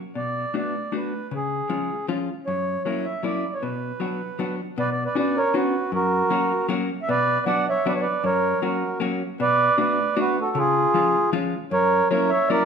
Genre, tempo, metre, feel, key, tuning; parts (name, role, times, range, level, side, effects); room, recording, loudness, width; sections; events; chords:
musette waltz; 155 BPM; 3/4; straight; B harmonic minor; A4 = 440 Hz
mellow accordion; melody; 0.2-12.7 s; E#4 to F#5; -22 LUFS; right 2 dB
vintage hollow-body jazz guitar; accompaniment; 0.2-12.7 s; F#2 to F#4; -26 LUFS; left 3 dB
moderate recital hall reverb, RT60 1.3 s; minimal, uncompressed stereo recording; -21 LUFS; side -6 dB against mid
0.0-4.8 A section; 4.8-12.7 A section
0.1 Bm7; 1.3 C#; 2.5 F#7; 3.6 Bm; 4.8 Bmadd9; 5.9 F#; 7.1 Bm; 8.2 F#; 9.4 Bm7; 10.6 C#; 11.7 F#7